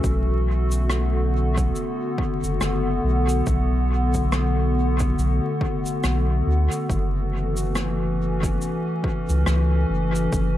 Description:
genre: ambient dub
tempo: 70 BPM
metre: 4/4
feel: swing 58% on 16ths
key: B minor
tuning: A4 = 440 Hz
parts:
  - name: warbly tape-like pad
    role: sustained chords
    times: 0.0-10.6 s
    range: D3 to A4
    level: -24 LUFS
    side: left 1 dB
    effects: chorus, built-in reverb
  - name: soft dub sub bass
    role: bass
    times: 0.0-10.6 s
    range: F#1 to D2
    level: -22 LUFS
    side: equal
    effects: none
  - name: cabasa and rim click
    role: drums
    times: 0.0-10.5 s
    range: none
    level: -31 LUFS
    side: equal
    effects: dub echo
  - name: electronic kick drum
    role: drums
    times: 0.0-10.5 s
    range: none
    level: -27 LUFS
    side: equal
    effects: overdrive
room: studio reverb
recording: echo-heavy mix, vinyl crackle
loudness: -20 LUFS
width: side -13 dB against mid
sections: 0.0-10.6 A section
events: none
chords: 0.0 Bm7; 6.9 F#m7

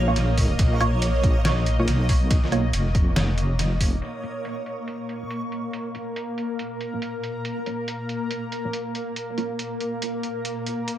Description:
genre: deep dubstep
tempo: 140 BPM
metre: 4/4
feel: swing 61% on 16ths, half-time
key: Bb phrygian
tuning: A4 = 440 Hz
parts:
  - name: granular cloud pad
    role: sustained chords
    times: 0.0-11.0 s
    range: Bb3 to Eb5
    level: -29 LUFS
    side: left 1 dB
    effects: built-in reverb
  - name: deep soft wobble bass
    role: bass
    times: 0.0-4.0 s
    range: F1 to Cb2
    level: -22 LUFS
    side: equal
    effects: chorus, tube saturation
  - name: backwards swelling texture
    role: texture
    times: 0.0-4.0 s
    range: Db5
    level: -34 LUFS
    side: right 3 dB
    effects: built-in reverb
  - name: filtered dub chord stab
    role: stabs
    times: 0.1-9.5 s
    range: Bb3 to Db5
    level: -29 LUFS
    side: right 2 dB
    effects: phaser, wide subtle chorus, dub echo
  - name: trip hop sampler-style drum kit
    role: drums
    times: 0.2-11.0 s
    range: hi-hat, ride cymbal, snare drum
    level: -30 LUFS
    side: right 1 dB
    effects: low-pass filter on hats, low-pass filter on snare, low-pass filter on cymbals, analog delay
  - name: electronic kick drum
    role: drums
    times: 0.4-3.9 s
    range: none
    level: -21 LUFS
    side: equal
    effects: none
room: light reverb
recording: echo-heavy mix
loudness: -22 LUFS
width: side -12 dB against mid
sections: 0.0-4.0 A section; 4.0-11.0 B section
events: drop 0.0-4.0; filter sweep on drum 4.0-11.0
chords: 0.0 Bbm

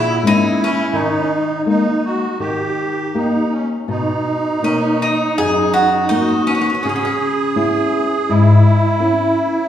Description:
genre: fado-style ballad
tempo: 83 BPM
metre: 4/4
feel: rubato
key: unclear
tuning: A4 = 440 Hz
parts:
  - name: Greek bouzouki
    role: melody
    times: 0.0-7.1 s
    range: C#4 to G#4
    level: -18 LUFS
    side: equal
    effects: none
  - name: musette accordion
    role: second line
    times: 0.0-9.7 s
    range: C#4 to G#4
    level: -19 LUFS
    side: right 2 dB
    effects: none
  - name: flamenco guitar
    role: accompaniment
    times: 0.0-9.6 s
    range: F#2 to G4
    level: -17 LUFS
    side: left 2 dB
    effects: none
room: wet scoring stage reverb, RT60 1.6 s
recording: recorded in a church or concert hall, small room ambience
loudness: -14 LUFS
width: side -10 dB against mid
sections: 0.0-9.7 A section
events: none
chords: 0.0 A#m7b5; 0.9 D#sus4; 2.4 D#; 3.9 Bmaj7; 6.8 C#m7

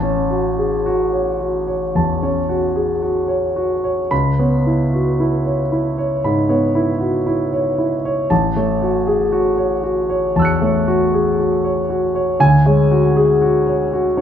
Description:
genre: classical, impressionist solo piano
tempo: 53-60 BPM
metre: 4/4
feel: rubato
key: A major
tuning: A4 = 439 Hz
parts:
  - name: warm grand piano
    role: solo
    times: 0.0-14.2 s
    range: A1 to C#7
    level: -15 LUFS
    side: equal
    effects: none
room: wet recital hall reverb, RT60 1.4 s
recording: minimal, uncompressed stereo recording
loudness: -15 LUFS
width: side -9 dB against mid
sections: 0.0-14.2 A section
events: none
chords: 0.0 A6; 4.1 C#m7; 8.3 A6; 12.4 Dmaj7#11

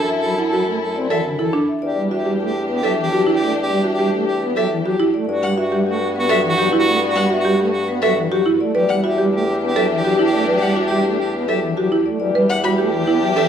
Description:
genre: classical, minimalist pattern music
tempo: 104 BPM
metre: 3/4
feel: straight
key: E minor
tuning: A4 = 438 Hz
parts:
  - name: vibraphone with hard mallets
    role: melody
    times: 0.0-13.4 s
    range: G4 to F#5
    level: -24 LUFS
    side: left 9 dB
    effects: none
  - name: edgy soprano saxophone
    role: second line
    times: 0.0-13.5 s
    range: F#4 to A4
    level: -24 LUFS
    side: right 2 dB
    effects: none
  - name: warm studio violin section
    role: sustained chords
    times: 0.0-13.5 s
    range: B3 to A4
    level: -27 LUFS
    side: left 4 dB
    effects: none
  - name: mellow bassoon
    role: bass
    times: 0.0-13.5 s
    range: E2 to G2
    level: -25 LUFS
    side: equal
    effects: none
  - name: pipe organ, principal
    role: accompaniment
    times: 0.2-13.5 s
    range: D3 to C4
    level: -24 LUFS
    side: equal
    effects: none
  - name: buzzing marimba with medium hard mallets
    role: arpeggios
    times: 0.4-13.5 s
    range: D4 to B4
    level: -21 LUFS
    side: right 4 dB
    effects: none
  - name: rich violin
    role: arpeggios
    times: 1.1-13.5 s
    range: E5 to B5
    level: -25 LUFS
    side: left 5 dB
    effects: none
room: moderate recital hall reverb, RT60 1.5 s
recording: none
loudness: -16 LUFS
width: side -8 dB against mid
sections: 0.0-12.2 A section; 12.2-13.5 B section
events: none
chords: 0.0 F#m7; 1.8 Em9; 5.3 Gmaj9; 8.7 Em9

